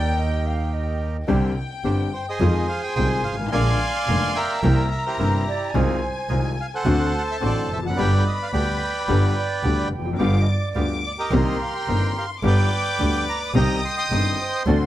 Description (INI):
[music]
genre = tango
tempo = 108 BPM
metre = 4/4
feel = rubato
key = C minor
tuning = A4 = 439 Hz
[part]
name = concert flute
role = second line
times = 0.0-1.3, 5.5-10.9, 14.4-14.9 s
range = B4 to G5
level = -30 LUFS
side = right 5 dB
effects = none
[part]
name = warm studio violin section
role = second line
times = 0.0-14.9 s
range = G5 to Eb6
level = -31 LUFS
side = left 4 dB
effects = none
[part]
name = clear upright piano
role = accompaniment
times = 0.0-14.9 s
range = F1 to G4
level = -24 LUFS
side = left 3 dB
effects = none
[part]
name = bandoneon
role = stabs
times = 0.0-14.9 s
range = B3 to C5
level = -35 LUFS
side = right 6 dB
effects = none
[part]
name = rich double bass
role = bass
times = 0.0-14.9 s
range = F1 to F2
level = -22 LUFS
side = right 1 dB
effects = none
[part]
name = bandoneon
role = melody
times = 2.1-14.6 s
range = E4 to Eb6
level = -25 LUFS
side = right 2 dB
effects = none
[sound]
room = little or no reverb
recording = dry, close 1970s-style studio recording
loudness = -19 LUFS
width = side -13 dB against mid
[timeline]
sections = 0.0-1.3 A section; 1.3-14.9 B section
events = violin section solo 0.0-1.3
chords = 0.0 Eb; 1.3 Csus2; 2.4 Fm7; 3.5 Bb7; 4.6 C7; 5.7 Fm7/C; 6.9 D7; 8.0 G; 10.2 G7; 11.3 Cm7; 12.4 G; 13.5 Cm